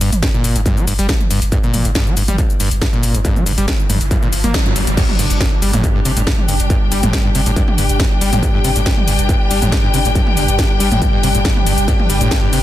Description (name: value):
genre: driving peak-time techno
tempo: 139 BPM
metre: 4/4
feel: straight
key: unclear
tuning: A4 = 443 Hz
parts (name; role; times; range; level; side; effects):
- screaming distorted acid line; riff; 0.0-12.6 s; G1 to Bb3; -20 LUFS; equal; distortion, chorus, sidechain pumping, ping-pong delay
- warm sub bass; bass; 0.0-12.6 s; G1; -19 LUFS; equal; tube saturation, sidechain pumping, low-pass filter
- techno drum kit; drums; 0.0-12.6 s; crash cymbal, hi-hat, ride cymbal, shaker, snare drum, toms; -20 LUFS; equal; none
- electronic kick drum; drums; 0.2-12.4 s; none; -17 LUFS; equal; distortion
- riser and impact; sound effects; 2.8-6.7 s; none; -26 LUFS; right 1 dB; none
- analog drone; drone; 6.0-12.6 s; G2 to G3; -24 LUFS; left 1 dB; chorus, sidechain pumping
- warm studio string section; texture; 5.0-12.6 s; D4 to G5; -21 LUFS; left 3 dB; sidechain pumping
room: light reverb, digital ambience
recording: dense, heavily limited modern master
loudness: -13 LUFS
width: side -13 dB against mid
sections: 0.0-5.0 A section; 5.0-12.6 B section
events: riser 2.8-5.0; band accent 4.5; drop 5.0-12.6; impact 5.0-6.7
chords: 0.0 Gm; 5.0 G5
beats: 0.23 0.66 1.09 | 1.52 1.95 2.38 2.82 | 3.25 3.68 4.11 4.54 | 4.97 5.41 5.84 6.27 | 6.70 7.13 7.57 8.00 | 8.43 8.86 9.29 9.72 | 10.15 10.59 11.02 11.45 | 11.88 12.31